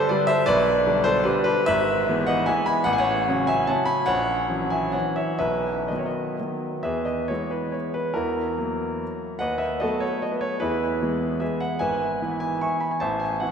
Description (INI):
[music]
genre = classical, romantic triple-time dance for piano with dotted rhythms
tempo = 116-165 BPM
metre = 3/4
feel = rubato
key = E major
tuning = A4 = 436 Hz
[part]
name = clear grand piano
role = solo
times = 0.0-13.5 s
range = G#1 to C#6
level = -21 LUFS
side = equal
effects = none
[sound]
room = wet church reverb, RT60 3.5 s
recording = none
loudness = -21 LUFS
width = side -7 dB against mid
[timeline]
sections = 0.0-6.9 A section; 6.9-13.5 B section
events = none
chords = 0.5 G/B; 1.7 E/G#; 2.9 F#m/A; 4.1 F#7/A#; 5.4 B; 6.9 E; 8.2 F#7/E; 9.4 B7/D#; 10.6 E; 11.8 E/G#